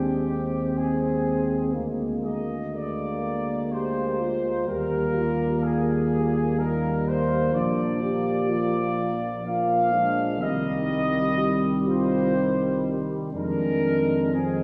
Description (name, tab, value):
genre	classical, hymn-like piece for brass band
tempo	62 BPM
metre	3/4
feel	rubato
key	unclear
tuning	A4 = 440 Hz
part	dark trumpet section	melody	0.0-14.6 s	G4 to F5	-30 LUFS	equal	none
part	warm French horn section	second line	0.0-14.6 s	G3 to C4	-33 LUFS	equal	none
part	mellow trombone	accompaniment	0.0-14.6 s	Eb3 to Ab3	-34 LUFS	equal	none
part	warm euphonium	accompaniment	0.0-14.6 s	Ab3 to G4	-33 LUFS	equal	none
part	mellow tuba	bass	0.0-14.6 s	Bb1 to F2	-30 LUFS	equal	none
room	wet concert hall reverb, RT60 2.3 s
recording	heard from further back in the room, small room reverb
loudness	-25 LUFS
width	mono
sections	0.0-14.6 A section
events	none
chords	0.0 Ab/Eb; 1.7 Bb7/D; 4.7 Eb; 7.5 Bb; 10.4 Cm; 13.3 Fm7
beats	0.77 | 1.75 2.75 3.73 | 4.67 5.63 6.58 | 7.54 8.50 9.45 | 10.41 11.38 12.36 | 13.34 14.34